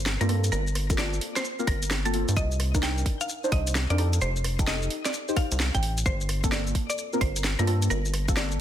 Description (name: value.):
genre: UK garage, two-step garage.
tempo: 130 BPM.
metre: 4/4.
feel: swing 65% on 16ths.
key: G minor.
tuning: A4 = 441 Hz.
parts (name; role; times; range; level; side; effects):
mallet-like synth pluck; melody; 0.0-8.6 s; A4 to G5; -33 LUFS; equal; chorus, ping-pong delay.
rubbery square bass; bass; 0.0-8.6 s; F1 to G2; -26 LUFS; equal; none.
garage drum kit; drums; 0.1-8.6 s; hi-hat, rim click, shaker, snare drum; -30 LUFS; equal; overdrive, studio reverb.
deep mellow chord stab; stabs; 0.2-8.6 s; Bb3 to C5; -32 LUFS; left 1 dB; chorus, phaser, digital delay.
electronic kick drum; drums; 0.9-8.3 s; none; -26 LUFS; equal; overdrive, studio reverb.
room: light reverb, digital ambience.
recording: dense, heavily limited modern master.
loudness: -24 LUFS.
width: side -11 dB against mid.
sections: 0.0-8.6 A section.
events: none.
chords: 0.0 Gm11; 2.4 Cm9; 4.0 F9; 6.1 Gm11.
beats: 0.06 | 0.52 0.98 1.44 1.91 | 2.37 2.83 3.29 3.75 | 4.21 4.67 5.14 5.60 | 6.06 6.52 6.98 7.44 | 7.91 8.37.